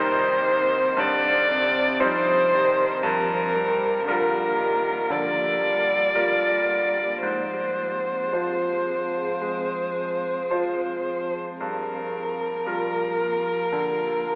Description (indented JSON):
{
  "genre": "neoclassical piano and strings",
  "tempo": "54-59 BPM",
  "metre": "4/4",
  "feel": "rubato",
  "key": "F dorian",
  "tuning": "A4 = 442 Hz",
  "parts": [
    { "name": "muted violin", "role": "melody", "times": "0.0-14.4 s", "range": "Bb4 to D5", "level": "-22 LUFS", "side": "equal", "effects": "none" },
    { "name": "muted cello", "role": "second line", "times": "0.0-14.4 s", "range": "C3 to G3", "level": "-35 LUFS", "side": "equal", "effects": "none" },
    { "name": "bright concert grand piano", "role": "accompaniment", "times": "0.0-14.4 s", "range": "C2 to C5", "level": "-27 LUFS", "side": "equal", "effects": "none" },
    { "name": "granular cloud pad", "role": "sustained chords", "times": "0.1-14.4 s", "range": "Bb3 to F5", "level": "-35 LUFS", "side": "equal", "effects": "built-in reverb" }
  ],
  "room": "wet cathedral reverb, RT60 5.1 s",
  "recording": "in a vast, echoing space, telephone sound",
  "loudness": "-21 LUFS",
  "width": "side -33 dB against mid",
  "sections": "0.0-14.4 A section",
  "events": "none",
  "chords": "0.0 Cm; 3.0 Gm7; 7.2 Fm/Ab; 11.6 Gm7"
}